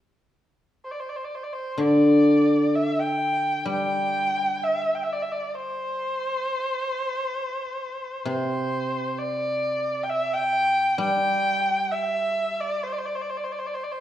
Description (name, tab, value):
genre	chinese traditional, Chinese chamber ensemble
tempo	65 BPM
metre	4/4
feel	rubato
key	unclear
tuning	A4 = 441 Hz
part	dark erhu	melody	0.8-14.0 s	C5 to G5	-25 LUFS	equal	none
part	guzheng	accompaniment	1.8-13.7 s	C3 to G3	-23 LUFS	left 1 dB	none
room	wet recital hall reverb, RT60 1.4 s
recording	dark, warm production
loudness	-22 LUFS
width	side -12 dB against mid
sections	0.0-1.8 A section; 1.8-14.0 B section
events	none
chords	none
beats	0.84 | 1.80 2.74 3.68 4.61 | 5.53 6.45 7.36 8.27 | 9.18 10.09 11.01 11.92 | 12.83 13.74